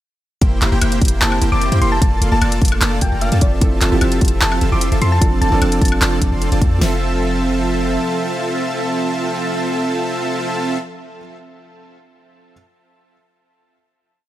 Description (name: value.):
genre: future bass.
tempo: 150 BPM.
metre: 4/4.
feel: half-time.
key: F major.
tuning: A4 = 441 Hz.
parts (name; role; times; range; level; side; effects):
airy breathy pad; sustained chords; 0.8-10.8 s; F3 to E5; -28 LUFS; right 1 dB; chorus, sidechain pumping.
dense compressed supersaw; riff; 0.4-10.8 s; Bb3 to C6; -21 LUFS; right 1 dB; sidechain pumping.
warm 808-style bass; bass; 0.4-8.0 s; F1 to F2; -18 LUFS; equal; sidechain pumping.
pop drum kit; drums; 0.4-6.9 s; hi-hat, kick drum, snare drum; -16 LUFS; equal; none.
pop drum kit; drums; 0.4-6.7 s; handclaps, hi-hat, woodblock; -20 LUFS; equal; overdrive.
thumb-piano-like synth pluck; melody; 1.2-6.4 s; D5 to D6; -23 LUFS; left 1 dB; chorus, vintage 12-bit sampler grit, sidechain pumping, dub echo.
felt-muted upright piano; accompaniment; 3.6-12.5 s; F3 to E5; -25 LUFS; right 3 dB; sidechain pumping, tape echo.
room: light reverb.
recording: none.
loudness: -14 LUFS.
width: side -14 dB against mid.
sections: 0.4-6.8 drop; 6.8-10.0 final chord.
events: drop 0.4-6.8.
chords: 0.4 C7/F; 2.0 Bbmaj7/F; 3.4 Fmaj7; 5.2 Dm7/F; 6.8 Fmaj7.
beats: | 0.42 0.82 1.22 1.62 | 2.02 2.42 2.82 3.22 | 3.62 4.02 4.42 4.82 | 5.22 5.62 6.02 6.42 | 6.82 7.22 7.62 8.02 | 8.42 8.82 9.22 9.62.